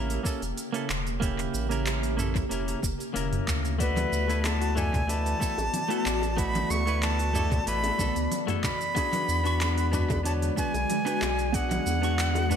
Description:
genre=sunset chillout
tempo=93 BPM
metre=4/4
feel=straight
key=A major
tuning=A4 = 440 Hz
part: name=semi-hollow electric guitar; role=accompaniment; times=0.0-12.6 s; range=A3 to C#6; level=-33 LUFS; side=moving between left 9 dB and right 8 dB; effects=auto-pan, tape echo
part: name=ethereal airy pad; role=sustained chords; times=0.0-12.6 s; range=C#3 to G4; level=-34 LUFS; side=equal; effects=ensemble chorus, built-in reverb, phaser
part: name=warm sub bass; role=bass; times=0.0-12.6 s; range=E1 to E2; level=-29 LUFS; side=equal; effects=none
part: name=smooth R&B drum kit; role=drums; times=0.1-12.6 s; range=handclaps, hi-hat, shaker, toms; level=-34 LUFS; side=right 1 dB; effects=tape echo
part: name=electronic kick drum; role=drums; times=0.2-11.7 s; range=none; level=-31 LUFS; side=equal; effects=none
part: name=breathy bright jazz flute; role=melody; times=3.8-12.6 s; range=B4 to C#6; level=-30 LUFS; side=equal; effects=tape echo
part: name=concert harp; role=arpeggios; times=3.8-12.6 s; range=F#4 to D5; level=-36 LUFS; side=left 8 dB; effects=tape echo
part: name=congas and bongos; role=percussion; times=4.0-12.5 s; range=none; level=-37 LUFS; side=right 2 dB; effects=tape echo
room=light reverb, digital ambience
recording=echo-heavy mix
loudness=-25 LUFS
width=side -8 dB against mid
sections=0.0-12.6 A section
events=none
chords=0.0 A7b9; 3.8 D69; 9.0 E9

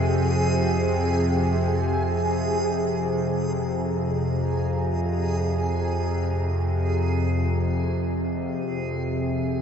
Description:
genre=dark ambient drone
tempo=free time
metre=none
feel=none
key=F minor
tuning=A4 = 440 Hz
part: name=deep dark ambient pad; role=sustained chords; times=0.0-9.6 s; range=F4 to Bb5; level=-38 LUFS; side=right 2 dB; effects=chorus, built-in reverb
part: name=bowed-like drone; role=drone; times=0.0-9.6 s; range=F2 to C3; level=-23 LUFS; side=equal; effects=built-in reverb
part: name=backwards swelling texture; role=texture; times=0.0-9.6 s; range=Ab4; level=-29 LUFS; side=right 2 dB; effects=built-in reverb
room=wet cathedral reverb, RT60 6.7 s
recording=cassette tape, nothing above 7.9 kHz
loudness=-22 LUFS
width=side -7 dB against mid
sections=0.0-9.6 A section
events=fade-out on ambient pad 0.0-9.6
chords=0.0 Fm

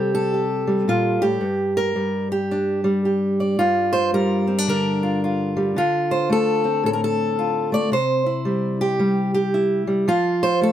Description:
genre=folk, solo fingerstyle acoustic guitar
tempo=111 BPM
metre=4/4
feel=swing 63% on 8ths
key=G dorian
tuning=A4 = 440 Hz
part: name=fingerpicked steel-string acoustic guitar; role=solo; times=0.0-10.7 s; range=G2 to D5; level=-18 LUFS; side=equal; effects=none
room=light reverb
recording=none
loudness=-18 LUFS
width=side -11 dB against mid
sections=0.0-3.6 A section; 3.6-10.7 B section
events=none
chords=0.0 C5; 1.4 Gm; 3.6 Gm7; 5.8 Dm7; 7.9 C; 10.1 F

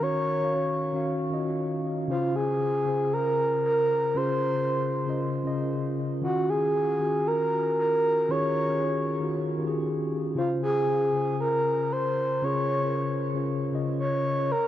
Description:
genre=amapiano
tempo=116 BPM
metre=4/4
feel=swing 55% on 16ths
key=Db major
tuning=A4 = 437 Hz
part: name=breathy flute-like synth lead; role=melody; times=0.0-14.7 s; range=F4 to Db5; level=-26 LUFS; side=equal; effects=chorus, tape echo
part: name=mellow tine electric piano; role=accompaniment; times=0.0-14.5 s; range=Db3 to F5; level=-28 LUFS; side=left 1 dB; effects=medium stereo tremolo, tape echo
room=moderate echo chamber reverb, RT60 1.6 s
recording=echo-heavy mix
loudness=-24 LUFS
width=side -12 dB against mid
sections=0.0-14.5 A section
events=none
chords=0.0 Ebm9; 2.1 Dbmaj7; 6.2 Ebm9; 10.4 Dbmaj7

